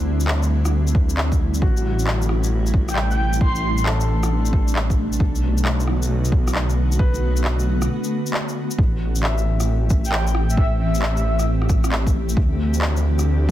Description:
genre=future garage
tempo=134 BPM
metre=4/4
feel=swing 66% on 16ths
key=A dorian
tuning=A4 = 440 Hz
part: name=clear upright piano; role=accompaniment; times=0.0-12.4 s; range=D4 to E5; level=-34 LUFS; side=left 5 dB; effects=sidechain pumping, dub echo
part: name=granular cloud pad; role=sustained chords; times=0.0-13.5 s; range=C3 to G4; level=-27 LUFS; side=equal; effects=built-in reverb, sidechain pumping
part: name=swelling detuned saw bass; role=bass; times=0.0-13.5 s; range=A1 to D2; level=-20 LUFS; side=equal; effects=sidechain pumping
part: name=electronic shaker, handclaps and rim click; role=drums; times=0.2-13.2 s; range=none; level=-26 LUFS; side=equal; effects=none
part: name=electronic kick drum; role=drums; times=0.9-13.5 s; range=none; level=-19 LUFS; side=equal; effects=none
part: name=breathy flute-like synth lead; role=melody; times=2.9-3.9, 10.1-11.4 s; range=E5 to C6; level=-27 LUFS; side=equal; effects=analog chorus, tape echo
room=light reverb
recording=dense, heavily limited modern master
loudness=-18 LUFS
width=side -13 dB against mid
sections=0.0-8.8 A section; 8.8-13.5 A section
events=break 7.9-8.8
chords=0.0 D9sus4; 1.6 Am7; 5.2 Bm7; 8.8 Am7; 12.4 D9sus4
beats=0.28 0.72 1.17 | 1.62 2.07 2.52 2.96 | 3.41 3.86 4.31 4.75 | 5.20 5.65 6.10 6.55 | 6.99 7.44 7.89 8.34 | 8.78 9.23 9.68 10.13 | 10.57 11.02 11.47 11.92 | 12.37 12.81 13.26

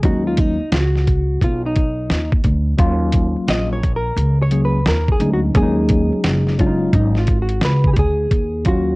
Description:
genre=hip hop, jazz-hop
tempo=87 BPM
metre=4/4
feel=swing 64% on 16ths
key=Eb minor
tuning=A4 = 439 Hz
part: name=mellow tine electric piano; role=accompaniment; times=0.0-9.0 s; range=F#3 to Ab4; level=-20 LUFS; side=left 1 dB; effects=medium stereo tremolo, cassette tape
part: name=upright bass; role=bass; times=0.0-9.0 s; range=Gb1 to D#2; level=-18 LUFS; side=equal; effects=transformer saturation
part: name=boom bap sampler-style drum kit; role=drums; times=0.0-8.9 s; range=hi-hat, kick drum, snare drum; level=-18 LUFS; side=equal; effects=cassette tape
part: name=hollow-body jazz guitar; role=melody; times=0.1-9.0 s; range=D#4 to Eb5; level=-22 LUFS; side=equal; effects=cassette tape, plate reverb
room=little or no reverb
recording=home recording on cassette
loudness=-15 LUFS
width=side -24 dB against mid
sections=0.0-8.3 A section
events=hollow-body jazz guitar solo 0.0-8.3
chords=0.0 B69; 2.8 Ebm9; 5.6 Ebm11/Gb; 8.3 Ebm9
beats=| 0.04 0.72 1.41 2.10 | 2.79 3.48 4.17 4.86 | 5.55 6.24 6.93 7.62 | 8.31

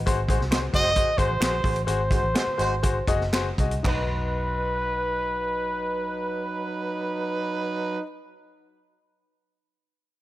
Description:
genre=uptempo 1960s-style soul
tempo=115-135 BPM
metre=4/4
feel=straight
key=unclear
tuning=A4 = 439 Hz
part: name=vintage muted fingered electric bass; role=bass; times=0.0-8.0 s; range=F#1 to B#1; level=-29 LUFS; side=equal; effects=none
part: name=clear grand piano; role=accompaniment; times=0.1-8.0 s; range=D#4 to D#5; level=-30 LUFS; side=left 5 dB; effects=none
part: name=vintage drum kit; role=drums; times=0.1-4.0 s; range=crash cymbal, hi-hat, kick drum, snare drum, toms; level=-26 LUFS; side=equal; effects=none
part: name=mellow horn section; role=second line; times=0.3-8.0 s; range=F#3 to B#4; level=-31 LUFS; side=right 3 dB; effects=none
part: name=finger snaps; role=percussion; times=0.5-4.1 s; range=none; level=-35 LUFS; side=right 3 dB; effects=none
part: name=breathy trumpet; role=melody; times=0.7-8.0 s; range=B4 to D#5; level=-27 LUFS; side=equal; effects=slapback echo
room=light reverb, small room ambience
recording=none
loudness=-23 LUFS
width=side -15 dB against mid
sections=0.0-3.8 A section; 3.8-8.0 B section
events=slowing down 0.1-3.8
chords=0.1 G#7; 3.8 B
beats=| 0.06 0.51 0.96 1.41 | 1.88 2.35 2.83 3.33 | 3.84 4.37 4.89 5.41 | 5.93 6.46 6.98 7.50

